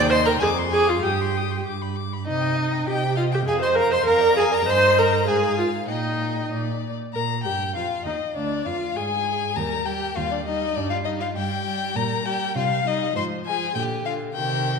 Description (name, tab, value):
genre	quick classical-period movement for string quartet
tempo	100 BPM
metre	2/4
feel	straight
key	Eb major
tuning	A4 = 437 Hz
part	warm violin	melody	0.0-14.8 s	D5 to Eb6	-27 LUFS	left 8 dB	none
part	warm cello	bass	0.0-14.8 s	D2 to C3	-28 LUFS	right 3 dB	none
part	rich violin	second line	0.1-14.8 s	D4 to C6	-29 LUFS	left 3 dB	none
part	rich viola	accompaniment	0.1-14.8 s	D3 to C5	-23 LUFS	right 2 dB	none
room	wet scoring stage reverb, RT60 2.1 s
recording	recorded in a church or concert hall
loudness	-20 LUFS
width	side -5 dB against mid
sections	0.0-7.1 A section; 7.1-14.8 B section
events	none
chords	0.4 Dm7b5/F; 1.0 Cm/G; 2.3 Cm; 3.5 Fmadd11; 4.1 Bb/F; 4.7 Eb/G; 5.3 Fm/Ab; 5.9 Eb/Bb; 6.5 Bb; 7.1 Eb; 8.4 Ddim; 9.6 Eb; 10.8 Ebmaj9/G (rootless); 12.0 Gm/Bb; 12.6 Cm; 13.2 Fm/Ab; 13.8 Bb